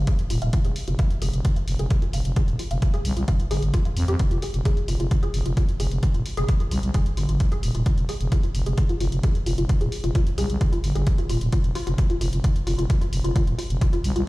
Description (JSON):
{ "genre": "driving peak-time techno", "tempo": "131 BPM", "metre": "4/4", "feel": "straight", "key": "F minor", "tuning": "A4 = 437 Hz", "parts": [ { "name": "growling FM bass", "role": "bass", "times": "0.0-14.2 s", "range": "Eb1 to F2", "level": "-23 LUFS", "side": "equal", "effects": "sidechain pumping" }, { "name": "woody wave-folded pluck", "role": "riff", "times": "0.1-14.2 s", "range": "F4 to F5", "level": "-32 LUFS", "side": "left 1 dB", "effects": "ensemble chorus, sidechain pumping, tape echo" }, { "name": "electronic hi-hat", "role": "drums", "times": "0.1-14.2 s", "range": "none", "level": "-38 LUFS", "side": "left 1 dB", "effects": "none" }, { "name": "electronic kick drum", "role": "drums", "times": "0.1-13.9 s", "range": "none", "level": "-21 LUFS", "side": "equal", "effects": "none" } ], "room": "digital ambience", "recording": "played on a big sound system in a bare room, large studio reverb", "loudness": "-20 LUFS", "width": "side -20 dB against mid", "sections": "0.0-14.3 A section", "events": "none", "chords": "none" }